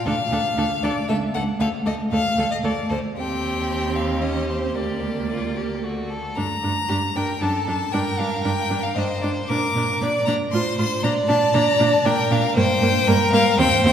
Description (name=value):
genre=quick classical-period movement for string quartet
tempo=116 BPM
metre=3/4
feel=straight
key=G minor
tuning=A4 = 439 Hz
part: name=clear violin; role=melody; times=0.0-13.9 s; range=C5 to D6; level=-24 LUFS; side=left 4 dB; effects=none
part: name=clear violin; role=second line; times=0.1-13.9 s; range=F4 to D5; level=-25 LUFS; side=equal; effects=none
part: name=rich viola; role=accompaniment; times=0.1-13.9 s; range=A3 to F4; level=-26 LUFS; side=right 1 dB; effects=none
part: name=rich cello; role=bass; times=0.1-13.9 s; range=C#2 to Bb2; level=-24 LUFS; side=right 2 dB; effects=none
room=wet church reverb, RT60 3.5 s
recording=recorded in a church or concert hall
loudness=-19 LUFS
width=side -9 dB against mid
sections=0.0-6.4 A section; 6.4-13.9 A section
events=none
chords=0.1 Dm; 1.1 A/C#; 1.6 D5; 3.2 Cm/Eb; 4.2 Eb7; 4.8 Gm/D; 5.8 D; 6.4 Gm; 7.4 D/F#; 7.9 Gm; 9.5 Bb; 10.5 F; 11.0 Bb; 12.6 Gm